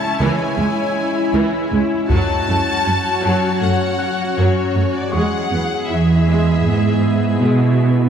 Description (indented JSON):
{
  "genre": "cinematic, hybrid orchestral and electronic film score",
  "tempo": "79 BPM",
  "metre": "4/4",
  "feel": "straight",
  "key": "F# minor",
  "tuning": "A4 = 442 Hz",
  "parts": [
    { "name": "warm symphonic violin section", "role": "melody", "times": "0.0-7.4 s", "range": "C#5 to A5", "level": "-23 LUFS", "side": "left 4 dB", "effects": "none" },
    { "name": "rich symphonic viola section", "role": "accompaniment", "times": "0.0-8.0 s", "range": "E3 to G#4", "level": "-23 LUFS", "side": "equal", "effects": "none" },
    { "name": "organ-like drone", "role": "sustained chords", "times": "0.0-8.1 s", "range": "F#3 to E5", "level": "-21 LUFS", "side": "left 2 dB", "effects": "ensemble chorus, built-in reverb" },
    { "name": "bright grand piano", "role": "texture", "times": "0.0-8.1 s", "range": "E5 to G#6", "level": "-32 LUFS", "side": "left 1 dB", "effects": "digital delay" },
    { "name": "rich symphonic cello section", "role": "bass", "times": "0.2-8.1 s", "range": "C#2 to B2", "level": "-18 LUFS", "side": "right 3 dB", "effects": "none" },
    { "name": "taiko ensemble", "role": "drums", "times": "2.1-3.6 s", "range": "none", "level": "-21 LUFS", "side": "left 1 dB", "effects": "none" }
  ],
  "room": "moderate scoring stage reverb, RT60 1.7 s",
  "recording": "none",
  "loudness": "-15 LUFS",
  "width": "side -8 dB against mid",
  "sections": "0.0-8.1 A section",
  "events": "none",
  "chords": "0.0 C#m; 2.1 F#m; 5.1 E"
}